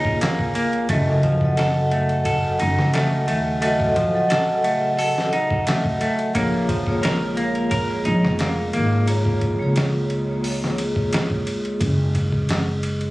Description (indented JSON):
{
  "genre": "trip hop",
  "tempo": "88 BPM",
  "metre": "4/4",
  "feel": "straight",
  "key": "unclear",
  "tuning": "A4 = 441 Hz",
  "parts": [
    { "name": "vibraphone with medium hard mallets", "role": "accompaniment", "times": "0.0-11.8 s", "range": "Gb3 to Gb5", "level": "-23 LUFS", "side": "equal", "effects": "tremolo, tape echo" },
    { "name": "warbly tape-like pad", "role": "sustained chords", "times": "0.0-13.1 s", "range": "Db3 to Ab5", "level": "-30 LUFS", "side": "equal", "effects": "chorus, built-in reverb, vintage 12-bit sampler grit" },
    { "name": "semi-hollow electric guitar", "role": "arpeggios", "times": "0.0-9.1 s", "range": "F3 to Bb4", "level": "-24 LUFS", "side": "left 1 dB", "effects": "vintage 12-bit sampler grit, ping-pong delay" },
    { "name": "upright bass", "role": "bass", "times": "0.0-13.1 s", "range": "F1 to Eb2", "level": "-23 LUFS", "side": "equal", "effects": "none" },
    { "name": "trip hop sampler-style drum kit", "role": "drums", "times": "0.0-13.1 s", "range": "hi-hat, kick drum, ride cymbal, snare drum", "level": "-26 LUFS", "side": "equal", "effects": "small room ambience" }
  ],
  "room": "light reverb",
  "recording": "recorded on a phone in the room, club reverb, vinyl crackle, compression",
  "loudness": "-18 LUFS",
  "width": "side -19 dB against mid",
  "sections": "0.0-13.1 A section",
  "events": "filter sweep on vibraphone 0.0-11.8",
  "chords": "0.0 Bbm7; 0.9 Gbm6; 6.4 Bbm7; 11.8 Gb5"
}